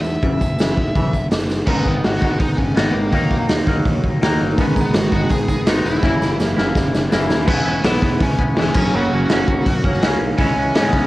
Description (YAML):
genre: indie rock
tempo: 166 BPM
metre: 4/4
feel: straight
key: unclear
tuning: A4 = 439 Hz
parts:
  - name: bluesy overdriven lead guitar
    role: melody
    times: 0.0-11.1 s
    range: A#3 to E5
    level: -25 LUFS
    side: equal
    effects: distortion
  - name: raw garage guitar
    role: riff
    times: 0.0-11.1 s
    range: F#2 to E4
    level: -20 LUFS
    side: equal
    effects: overdrive, phaser, cassette tape
  - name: fuzz fingered electric bass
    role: bass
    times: 0.0-11.1 s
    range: E1 to G#2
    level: -24 LUFS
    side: equal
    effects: overdrive
  - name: tambourine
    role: percussion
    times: 0.0-1.6, 4.6-7.4 s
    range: none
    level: -42 LUFS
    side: right 7 dB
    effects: none
  - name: raw garage drum kit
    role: drums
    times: 0.2-11.0 s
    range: crash cymbal, hi-hat, kick drum, snare drum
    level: -18 LUFS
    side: equal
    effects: cassette tape
room: light reverb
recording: home recording on cassette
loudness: -15 LUFS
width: side -17 dB against mid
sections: 0.0-1.7 A section; 1.7-7.5 B section; 7.5-11.1 C section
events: drum fill 1.5, 6.0-7.5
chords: 0.2 F#5; 1.7 G#m; 3.1 D#m; 4.6 G#m; 6.0 F#5; 7.5 E; 8.8 F#; 10.4 C#m